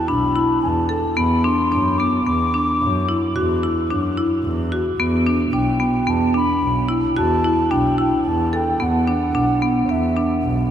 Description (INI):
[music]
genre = contemporary instrumental, contemporary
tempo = 110 BPM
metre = 7/4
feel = straight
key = E minor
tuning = A4 = 440 Hz
[part]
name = mellow baroque flute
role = melody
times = 0.0-10.4 s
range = E5 to D6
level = -23 LUFS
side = left 1 dB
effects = none
[part]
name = marimba with hard mallets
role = arpeggios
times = 0.1-10.6 s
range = B3 to A4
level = -19 LUFS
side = equal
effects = none
[part]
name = muted double bass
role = bass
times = 0.1-10.7 s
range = B1 to F#2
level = -23 LUFS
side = equal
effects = none
[sound]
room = wet huge ambient reverb, RT60 7.8 s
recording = in a vast, echoing space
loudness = -17 LUFS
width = side -9 dB against mid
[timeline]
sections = 0.0-10.7 A section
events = none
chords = 0.0 E7(no3); 1.2 Bm/E; 5.0 Em7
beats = 0.08 0.62 | 1.17 1.71 2.26 2.80 3.35 3.90 4.44 | 4.99 5.53 6.08 6.62 7.17 7.71 8.26 | 8.80 9.35 9.90 10.44